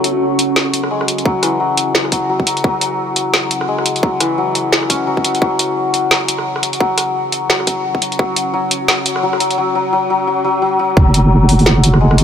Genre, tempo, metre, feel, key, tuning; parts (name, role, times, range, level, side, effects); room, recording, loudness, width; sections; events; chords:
half-time drum and bass; 173 BPM; 4/4; swing 58% on 16ths, half-time; A4 = 439 Hz
deep dark ambient pad; sustained chords; 0.0-12.2 s; C#4 to C#5; -24 LUFS; equal; chorus, built-in reverb, sidechain pumping
santur; arpeggios; 0.0-12.2 s; E3 to C#4; -16 LUFS; left 2 dB; ping-pong delay
drum and bass drum kit; drums; 0.0-12.2 s; hi-hat, rim click, snare drum; -16 LUFS; equal; high-pass filter on hats, high-pass filter on snare, high-pass filter on room
electronic kick drum; drums; 1.3-8.3, 11.0 s; -15 LUFS; equal; high-pass filter on kick, high-pass filter on room
deep soft wobble bass; bass; 11.0-12.2 s; F#1; -10 LUFS; right 1 dB; chorus, tube saturation
light reverb; -13 LUFS; side -8 dB against mid
0.0-11.0 A section; 11.0-12.2 B section
build-up 0.0-11.0; filter sweep on ambient pad 0.0-11.0; drop 11.0-12.2
0.0 F#5